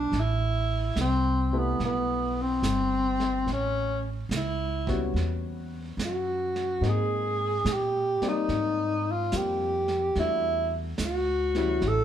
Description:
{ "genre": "jazz ballad", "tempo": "72 BPM", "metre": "4/4", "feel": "swing 68% on 8ths", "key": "unclear", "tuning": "A4 = 438 Hz", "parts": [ { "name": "breathy tenor saxophone", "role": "melody", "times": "0.0-12.0 s", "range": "B3 to A4", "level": "-27 LUFS", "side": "equal", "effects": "none" }, { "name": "dark baby grand piano", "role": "accompaniment", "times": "0.0-12.0 s", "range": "E3 to D5", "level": "-35 LUFS", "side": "left 3 dB", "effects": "none" }, { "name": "upright bass", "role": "bass", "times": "0.0-12.0 s", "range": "G1 to Bb2", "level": "-30 LUFS", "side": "right 1 dB", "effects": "none" }, { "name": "vintage brush drum kit", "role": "drums", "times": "0.1-12.0 s", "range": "brushed snare drum, hi-hat, kick drum, snare drum", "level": "-36 LUFS", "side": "right 4 dB", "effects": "none" } ], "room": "light reverb", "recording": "band playing live in one room", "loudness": "-25 LUFS", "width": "side -10 dB against mid", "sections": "0.0-12.0 A section", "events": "none", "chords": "0.1 Am9; 3.5 A13; 6.8 Abmaj9; 10.2 Em11" }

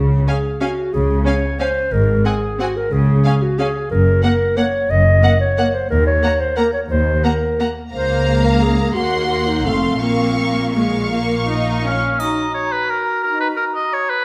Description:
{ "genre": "classical, orchestral ballroom waltz", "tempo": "154-196 BPM", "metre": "3/4", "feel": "rubato", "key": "Bb minor", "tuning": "A4 = 440 Hz", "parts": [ { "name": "dark studio double bass section", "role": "bass", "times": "0.0-12.0 s", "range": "F1 to Eb2", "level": "-24 LUFS", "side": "equal", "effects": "none" }, { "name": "rich symphonic cello section", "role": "bass", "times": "0.0-12.0 s", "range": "Db2 to Db3", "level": "-23 LUFS", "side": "equal", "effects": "none" }, { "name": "rich symphonic violin section", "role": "melody", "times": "0.3-12.0 s", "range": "Gb5 to Db6", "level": "-29 LUFS", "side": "equal", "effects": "none" }, { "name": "mellow clarinet", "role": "second line", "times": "0.3-14.2 s", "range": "Bb3 to Eb5", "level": "-23 LUFS", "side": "equal", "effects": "none" }, { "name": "rich symphonic violin section", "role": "second line", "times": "0.3-12.0 s", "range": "F5 to Gb5", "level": "-30 LUFS", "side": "equal", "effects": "none" }, { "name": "rich symphonic viola section", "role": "accompaniment", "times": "0.3-12.2 s", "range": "Ab3 to Eb4", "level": "-25 LUFS", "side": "equal", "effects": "none" }, { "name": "clear oboe", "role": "second line", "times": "11.9-14.2 s", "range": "Bb4 to F5", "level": "-21 LUFS", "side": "equal", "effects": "none" }, { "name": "small flute group", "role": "second line", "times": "12.2-14.2 s", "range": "Bb5", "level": "-27 LUFS", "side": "equal", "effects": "none" }, { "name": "warm French horn section", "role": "sustained chords", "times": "12.2-13.5 s", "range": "Eb4", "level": "-30 LUFS", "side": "equal", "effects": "none" }, { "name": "triangle", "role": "percussion", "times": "12.2-12.9 s", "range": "none", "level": "-36 LUFS", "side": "equal", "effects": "none" } ], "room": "moderate recital hall reverb, RT60 1.3 s", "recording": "none", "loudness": "-17 LUFS", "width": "mono", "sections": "0.0-12.2 A section; 12.2-14.2 B section", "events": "none", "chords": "0.0 Db5; 1.9 Ab7; 2.9 Db5; 3.9 Gb; 5.9 Eb5; 7.9 Bbm/Db; 9.0 Cm7b5/Eb; 9.7 F; 10.0 Bbm; 12.2 Ebm" }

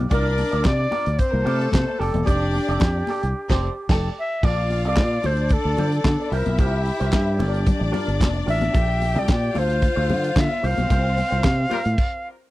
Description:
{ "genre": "disco", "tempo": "111 BPM", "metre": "4/4", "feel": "straight", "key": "unclear", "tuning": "A4 = 441 Hz", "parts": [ { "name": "electric guitar with an envelope filter", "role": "accompaniment", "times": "0.0-11.9 s", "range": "F4 to D5", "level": "-32 LUFS", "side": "right 3 dB", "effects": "spring reverb" }, { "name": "fingered electric bass", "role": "bass", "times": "0.0-11.9 s", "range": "E1 to D3", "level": "-22 LUFS", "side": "equal", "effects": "none" }, { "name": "bright reedy alto flute", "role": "melody", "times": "0.1-12.3 s", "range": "G4 to F5", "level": "-25 LUFS", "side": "equal", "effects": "none" }, { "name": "clear studio string section", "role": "second line", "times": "0.1-12.0 s", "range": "A3 to G5", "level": "-29 LUFS", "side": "left 3 dB", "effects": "none" }, { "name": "warm soul drum kit", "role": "drums", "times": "0.1-12.1 s", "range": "crash cymbal, handclaps, hi-hat, kick drum, snare drum", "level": "-20 LUFS", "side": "equal", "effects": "none" }, { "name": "congas", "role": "percussion", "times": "0.1-11.8 s", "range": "none", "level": "-30 LUFS", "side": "left 4 dB", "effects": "none" }, { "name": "warm horn section", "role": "stabs", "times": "11.7-11.8 s", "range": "G3 to Bb4", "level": "-30 LUFS", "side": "left 6 dB", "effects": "tape echo" } ], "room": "little or no reverb", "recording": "dry, close 1970s-style studio recording", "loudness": "-19 LUFS", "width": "side -17 dB against mid", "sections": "0.0-4.4 A section; 4.4-12.5 B section", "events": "band accent 3.4-4.4, 10.9-12.5; stop 12.0-12.5", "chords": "0.1 C9sus4; 2.0 F69; 4.4 Bbmaj7; 5.2 Dm7; 6.3 C7sus4; 7.4 Gm7; 8.7 Bbmaj7; 9.6 Dm7; 10.6 C7sus4" }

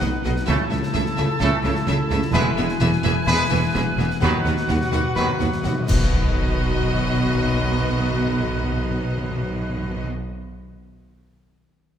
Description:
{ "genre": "cinematic, heroic adventure film score", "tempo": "127 BPM", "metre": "4/4", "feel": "straight", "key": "B mixolydian", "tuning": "A4 = 444 Hz", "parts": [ { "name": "clear symphonic violin section", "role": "melody", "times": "0.0-10.1 s", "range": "D#5 to F#5", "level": "-32 LUFS", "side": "left 3 dB", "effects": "none" }, { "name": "bright small flute group", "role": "second line", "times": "0.0-10.1 s", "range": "D#5 to A5", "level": "-31 LUFS", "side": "left 1 dB", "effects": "none" }, { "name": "mellow clarinet", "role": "second line", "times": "0.0-10.1 s", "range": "D#4 to F#4", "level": "-33 LUFS", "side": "left 2 dB", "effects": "none" }, { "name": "mellow oboe", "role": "second line", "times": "0.0-10.1 s", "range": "A4 to B4", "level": "-33 LUFS", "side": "right 1 dB", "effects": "none" }, { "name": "rich symphonic violin section", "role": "second line", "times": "0.0-10.1 s", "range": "F#4 to A4", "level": "-37 LUFS", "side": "left 3 dB", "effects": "none" }, { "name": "rich studio viola section", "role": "accompaniment", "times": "0.0-10.1 s", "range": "A3 to B3", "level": "-33 LUFS", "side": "right 1 dB", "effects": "none" }, { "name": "concert harp", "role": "arpeggios", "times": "0.0-10.4 s", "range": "B2 to F#5", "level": "-30 LUFS", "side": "left 8 dB", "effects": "none" }, { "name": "mellow tuba", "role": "bass", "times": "0.0-10.1 s", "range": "E1 to D#2", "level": "-28 LUFS", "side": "right 3 dB", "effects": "none" }, { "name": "rich symphonic cello section", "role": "bass", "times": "0.0-10.1 s", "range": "D#2 to C#3", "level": "-28 LUFS", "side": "right 1 dB", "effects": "none" }, { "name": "rich symphonic double bass section", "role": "bass", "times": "0.0-10.1 s", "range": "E1 to D#2", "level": "-26 LUFS", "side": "right 2 dB", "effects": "none" }, { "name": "concert snare drum, concert bass drum and clash cymbals", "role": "drums", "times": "0.0-6.2 s", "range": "none", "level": "-29 LUFS", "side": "equal", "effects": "none" }, { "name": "clear trombone section", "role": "sustained chords", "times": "0.5-10.1 s", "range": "D#3 to A3", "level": "-32 LUFS", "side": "right 3 dB", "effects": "none" }, { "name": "mellow French horn section", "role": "sustained chords", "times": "0.5-10.1 s", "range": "B3 to F#4", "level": "-36 LUFS", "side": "left 4 dB", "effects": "none" }, { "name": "warm trumpet", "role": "stabs", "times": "0.5-10.1 s", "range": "A4 to B4", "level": "-30 LUFS", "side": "left 1 dB", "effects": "none" }, { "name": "timpani", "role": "percussion", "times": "4.2-10.1 s", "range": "B2", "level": "-30 LUFS", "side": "equal", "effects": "none" }, { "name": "clash cymbals and concert bass drum", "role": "percussion", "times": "5.9-7.0 s", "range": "none", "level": "-28 LUFS", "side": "left 1 dB", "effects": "none" } ], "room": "moderate scoring stage reverb, RT60 1.9 s", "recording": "none", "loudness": "-19 LUFS", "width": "side -9 dB against mid", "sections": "0.0-6.1 A section; 6.1-9.9 B section", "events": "timpani fill 4.2-6.1; band accent 6.1-6.6", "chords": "0.5 A/C#; 2.3 E; 4.2 B/D#; 5.9 B" }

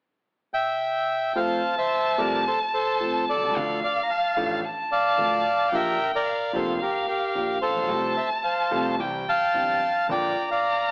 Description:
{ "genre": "tango", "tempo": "110 BPM", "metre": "4/4", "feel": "rubato", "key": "F major", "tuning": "A4 = 436 Hz", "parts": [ { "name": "bandoneon", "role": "melody", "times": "0.5-10.9 s", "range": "G4 to Bb5", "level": "-26 LUFS", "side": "equal", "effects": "none" }, { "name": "warm violin", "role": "second line", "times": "1.3-10.9 s", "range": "F5 to Bb5", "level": "-30 LUFS", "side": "equal", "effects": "none" }, { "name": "warm concert grand piano", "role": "accompaniment", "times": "1.4-10.3 s", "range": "F1 to A4", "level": "-33 LUFS", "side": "equal", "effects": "none" } ], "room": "moderate large studio reverb, RT60 1.2 s", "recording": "AM radio sound", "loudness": "-25 LUFS", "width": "mono", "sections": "0.0-1.4 A section; 1.4-10.9 B section", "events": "none", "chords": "0.0 N.C.; 1.4 F; 3.6 Dm; 5.7 Bb6; 7.9 F/C; 9.0 C; 10.1 Bb" }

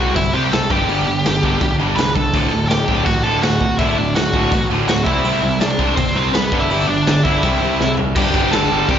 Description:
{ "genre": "punk rock", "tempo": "165 BPM", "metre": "4/4", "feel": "straight", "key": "unclear", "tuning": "A4 = 439 Hz", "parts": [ { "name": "bluesy overdriven lead guitar", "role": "melody", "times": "0.0-9.0 s", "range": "B3 to B5", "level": "-20 LUFS", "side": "equal", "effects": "distortion, slapback echo" }, { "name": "crunchy overdriven guitar", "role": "riff", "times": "0.0-9.0 s", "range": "D2 to C4", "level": "-23 LUFS", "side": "left 10 dB", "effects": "slapback echo" }, { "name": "tight distorted guitar", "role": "riff", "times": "0.0-9.0 s", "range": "D2 to C4", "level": "-22 LUFS", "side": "right 9 dB", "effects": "distortion, slapback echo" }, { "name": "fuzz picked electric bass", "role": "bass", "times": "0.0-9.0 s", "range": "D1 to C2", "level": "-21 LUFS", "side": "equal", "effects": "overdrive" }, { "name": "raw garage drum kit", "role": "drums", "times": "0.2-9.0 s", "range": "crash cymbal, hi-hat, kick drum, snare drum, toms", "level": "-21 LUFS", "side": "equal", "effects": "none" }, { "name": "overdriven semi-hollow guitar", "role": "riff", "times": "8.2-9.0 s", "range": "G2 to C4", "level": "-22 LUFS", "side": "equal", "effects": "slapback echo" } ], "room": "small room ambience", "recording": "live gig heard through the venue's PA, recital hall reverb, nothing above 7.5 kHz", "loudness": "-14 LUFS", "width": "side -9 dB against mid", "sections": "0.0-8.2 A section", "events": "drum fill 7.8-8.2", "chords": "0.0 C; 0.7 G; 2.3 D; 5.1 C; 6.5 G5; 7.4 C; 8.2 G5" }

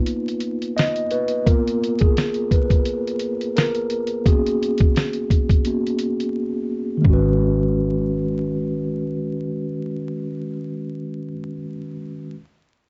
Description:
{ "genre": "lo-fi hip hop", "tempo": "86 BPM", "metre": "4/4", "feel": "swing 55% on 16ths", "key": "G# dorian", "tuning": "A4 = 440 Hz", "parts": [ { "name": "mellow tine electric piano", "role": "accompaniment", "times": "0.0-12.4 s", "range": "D#3 to D#5", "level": "-24 LUFS", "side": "equal", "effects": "low-pass filter" }, { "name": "dusty soul sampler-style drum kit", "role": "drums", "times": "0.1-7.2 s", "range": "hi-hat, kick drum, snare drum", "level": "-21 LUFS", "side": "equal", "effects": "vintage 12-bit sampler grit" }, { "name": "vintage muted picked electric bass", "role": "bass", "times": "7.1-11.3 s", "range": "G#1", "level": "-27 LUFS", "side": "equal", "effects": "none" } ], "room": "moderate studio reverb, RT60 0.5 s", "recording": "vinyl crackle, nothing above 7.9 kHz", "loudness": "-21 LUFS", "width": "mono", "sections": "0.0-7.0 A section; 7.0-9.8 B section", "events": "tine electric piano solo 0.0-7.0; break 6.3-7.0", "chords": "0.0 C#13 (rootless); 1.5 G#m69/A#; 4.3 G#m11; 7.0 G#m7" }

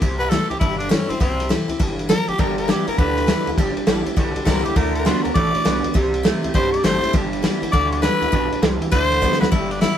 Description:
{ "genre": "rockabilly", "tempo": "202 BPM", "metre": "4/4", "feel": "swing 64% on 8ths", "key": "G major", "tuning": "A4 = 440 Hz", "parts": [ { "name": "picked steel-string acoustic guitar", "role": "accompaniment", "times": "0.0-10.0 s", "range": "G2 to F#4", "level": "-26 LUFS", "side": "left 3 dB", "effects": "none" }, { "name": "gritty driven synth bass", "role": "bass", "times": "0.0-9.9 s", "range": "G1 to D2", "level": "-26 LUFS", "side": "equal", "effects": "distortion" }, { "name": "vintage drum kit", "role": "drums", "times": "0.0-9.9 s", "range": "kick drum, ride cymbal, snare drum", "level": "-20 LUFS", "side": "equal", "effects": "none" }, { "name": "growling tenor saxophone", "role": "melody", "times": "0.2-10.0 s", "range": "C4 to D5", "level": "-22 LUFS", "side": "left 1 dB", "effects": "none" }, { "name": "electric guitar through a small old amp", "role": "riff", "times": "2.4-9.5 s", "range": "G2 to B3", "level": "-24 LUFS", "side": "right 3 dB", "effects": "none" } ], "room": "light reverb", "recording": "band playing live in one room, faint mains hum", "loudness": "-17 LUFS", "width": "side -9 dB against mid", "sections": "0.0-9.5 A section", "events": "tenor saxophone solo 0.0-9.5; drum fill 9.2", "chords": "0.0 C6; 2.4 G6; 4.8 D6; 6.0 C6; 7.1 G6; 8.9 D6" }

